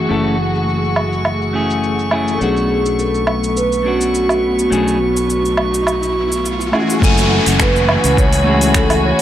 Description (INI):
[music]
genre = sunset chillout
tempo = 104 BPM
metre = 4/4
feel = swing 54% on 16ths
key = F# minor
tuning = A4 = 440 Hz
[part]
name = clean electric guitar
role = accompaniment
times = 0.0-9.2 s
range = A3 to G#5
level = -20 LUFS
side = left 1 dB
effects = auto-pan
[part]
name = muted studio string section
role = sustained chords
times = 0.0-9.2 s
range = E3 to G#5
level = -21 LUFS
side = equal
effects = none
[part]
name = sustaining fretless electric bass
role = bass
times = 0.0-9.1 s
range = F#1 to C#2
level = -20 LUFS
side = equal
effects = lush chorus
[part]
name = drifting glass-harmonics texture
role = texture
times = 0.0-9.2 s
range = B5 to C#6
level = -26 LUFS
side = right 1 dB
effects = chorus, built-in reverb
[part]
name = deep house drum kit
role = drums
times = 0.1-9.2 s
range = cabasa, finger snaps, hi-hat, woodblock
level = -20 LUFS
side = right 1 dB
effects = overdrive, low-pass filter on snare, low-pass filter on perc, low-pass filter on hats
[part]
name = vibraphone with soft mallets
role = melody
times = 2.3-9.2 s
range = F#4 to C#5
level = -18 LUFS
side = equal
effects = tape echo
[part]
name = riser and downlifter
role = sound effects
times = 4.5-9.2 s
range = none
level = -24 LUFS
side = equal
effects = none
[part]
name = electronic kick drum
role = drums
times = 7.0-8.9 s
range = none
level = -16 LUFS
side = equal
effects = overdrive
[sound]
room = light reverb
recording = dry, gritty hardware recording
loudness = -13 LUFS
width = side -11 dB against mid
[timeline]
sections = 0.0-7.0 A section; 7.0-9.2 B section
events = filter sweep on drum 0.0-7.0; riser 4.5-7.0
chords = 0.0 F#m9; 2.4 Bm9; 6.7 F#m9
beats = | 0.10 0.68 1.25 1.83 | 2.41 2.98 3.56 4.14 | 4.71 5.29 5.87 6.45 | 7.02 7.60 8.18 8.75